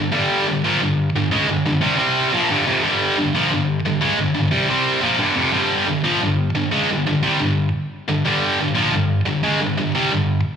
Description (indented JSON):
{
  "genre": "rock",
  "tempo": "89 BPM",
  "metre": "4/4",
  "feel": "straight",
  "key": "unclear",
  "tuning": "A4 = 439 Hz",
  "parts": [
    { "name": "heavy high-gain guitar", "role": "solo", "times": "0.0-10.4 s", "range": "F2 to C4", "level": "-16 LUFS", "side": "equal", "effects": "distortion, slapback echo" }
  ],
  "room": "light reverb, digital ambience",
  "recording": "live gig heard through the venue's PA, club reverb",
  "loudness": "-16 LUFS",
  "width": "side -7 dB against mid",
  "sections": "0.0-10.6 A section",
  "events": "none",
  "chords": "0.0 G5"
}